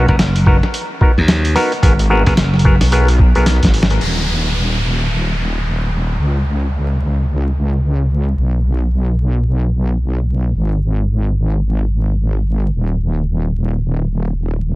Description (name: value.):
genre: glitch hop.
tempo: 110 BPM.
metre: 4/4.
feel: swing 60% on 16ths.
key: unclear.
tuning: A4 = 438 Hz.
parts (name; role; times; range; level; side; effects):
auto-wah clav; stabs; 0.0-3.5 s; B3 to A#4; -20 LUFS; equal; sidechain pumping, ping-pong delay.
wobble bass; bass; 0.0-14.8 s; Eb1 to Db2; -15 LUFS; equal; chorus, overdrive.
glassy slap bass; bass; 0.1-2.8 s; F#1 to D#2; -14 LUFS; equal; none.
electronic kick drum; drums; 0.1-3.7 s; none; -13 LUFS; equal; none.
boom bap sampler-style drum kit; drums; 0.2-4.1 s; crash cymbal, hi-hat, snare drum; -20 LUFS; equal; none.
downlifter; sound effects; 4.0-8.4 s; none; -25 LUFS; equal; none.
room: light reverb.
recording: vinyl crackle.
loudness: -13 LUFS.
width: side -19 dB against mid.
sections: 0.0-4.0 A section; 4.0-14.8 B section.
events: drum fill 3.5-4.0; band accent 3.8.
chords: 0.0 Bmaj7; 1.8 Abm9; 4.0 N.C..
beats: 0.19 0.74 1.28 | 1.83 2.38 2.92 3.47 | 4.01 4.56 5.10 5.65 | 6.19 6.74 7.28 7.83 | 8.38 8.92 9.47 10.01 | 10.56 11.10 11.65 12.19 | 12.74 13.28 13.83 14.38.